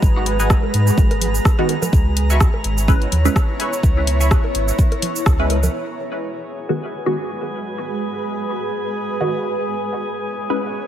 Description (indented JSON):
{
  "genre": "dub techno",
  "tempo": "126 BPM",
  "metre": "4/4",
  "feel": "swing 56% on 16ths",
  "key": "G# minor",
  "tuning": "A4 = 440 Hz",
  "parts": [
    { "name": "granular cloud pad", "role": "sustained chords", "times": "0.0-10.9 s", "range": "G#3 to C#5", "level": "-25 LUFS", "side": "right 1 dB", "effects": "built-in reverb, sidechain pumping" },
    { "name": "soft dub sub bass", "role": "bass", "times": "0.0-5.7 s", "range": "G#1 to G#2", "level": "-18 LUFS", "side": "equal", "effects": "tube saturation, sidechain pumping" },
    { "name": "deep house drum kit", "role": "drums", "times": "0.0-5.7 s", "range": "cabasa, hi-hat, rim click", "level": "-24 LUFS", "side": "right 1 dB", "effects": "low-pass filter on hats, low-pass filter on snare, low-pass filter on perc" },
    { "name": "electronic kick drum", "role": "drums", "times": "0.0-5.4 s", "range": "none", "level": "-16 LUFS", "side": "equal", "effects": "none" },
    { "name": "drifting glass-harmonics texture", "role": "texture", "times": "0.0-10.9 s", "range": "G#4 to A#5", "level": "-30 LUFS", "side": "equal", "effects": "chorus, built-in reverb, sidechain pumping" },
    { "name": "filtered dub chord stab", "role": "riff", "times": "0.4-4.3 s", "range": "B4 to C#6", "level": "-29 LUFS", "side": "equal", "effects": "lush chorus, sidechain pumping, dub echo" },
    { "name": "bongos and congas", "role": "percussion", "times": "0.6-5.7 s", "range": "none", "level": "-28 LUFS", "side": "right 3 dB", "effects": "sidechain pumping on perc, dub echo" },
    { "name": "filtered dub chord stab", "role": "stabs", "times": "1.6-10.7 s", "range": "D#3 to B4", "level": "-24 LUFS", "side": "right 1 dB", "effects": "phaser, sidechain pumping, dub echo" }
  ],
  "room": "light reverb, digital ambience",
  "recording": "none",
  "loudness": "-16 LUFS",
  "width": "side -10 dB against mid",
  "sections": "0.0-5.7 A section; 5.7-10.9 B section",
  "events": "band accent 5.3",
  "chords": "0.0 G#m7; 1.9 C#m7; 5.7 G#m7; 9.5 C#m7"
}